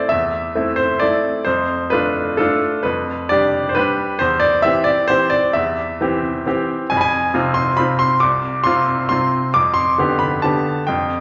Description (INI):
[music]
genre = classical, piano waltz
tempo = 134 BPM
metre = 3/4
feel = rubato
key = C major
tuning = A4 = 440 Hz
[part]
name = bright baby grand piano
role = solo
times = 0.0-11.2 s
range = C2 to D6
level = -18 LUFS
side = equal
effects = none
[sound]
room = wet recital hall reverb, RT60 1.5 s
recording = nothing above 7.7 kHz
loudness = -18 LUFS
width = mono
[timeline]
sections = 0.0-11.2 A section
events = none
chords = 0.0 Am; 1.5 Dm7/F; 2.9 G7/F; 4.2 C/E; 6.9 Fm; 9.5 G7/F